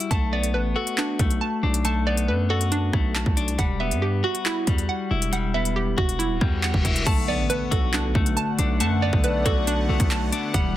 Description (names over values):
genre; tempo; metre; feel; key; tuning
hip hop, drill; 138 BPM; 4/4; half-time; B minor; A4 = 440 Hz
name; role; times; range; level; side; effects
clean electric guitar; accompaniment; 0.0-10.8 s; G3 to F#4; -27 LUFS; left 6 dB; low-pass filter
hollow square pluck; arpeggios; 0.0-10.8 s; D4 to A5; -28 LUFS; right 5 dB; chorus, low-pass filter, tape echo
drill drum kit; drums; 0.0-10.6 s; crash cymbal, handclaps, hi-hat, kick drum, rim click; -24 LUFS; equal; none
distorted 808-style bass; bass; 0.1-10.8 s; D1 to G2; -25 LUFS; equal; distortion
reverse cymbal and impact; sound effects; 6.4-8.8 s; none; -33 LUFS; equal; none
sweeping resonant pad; sustained chords; 7.1-10.8 s; D3 to F#5; -31 LUFS; right 1 dB; chorus
warm velvety synth lead; second line; 8.8-10.1 s; D5 to F#5; -31 LUFS; left 3 dB; chorus, tape echo
room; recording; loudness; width
digital ambience; dense, heavily limited modern master; -20 LUFS; side -13 dB against mid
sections
0.0-7.1 A section; 7.1-10.8 B section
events
reverse cymbal 6.4-7.1; impact 7.1-8.8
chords
0.1 Bm7; 3.6 Emadd9; 7.1 Bm7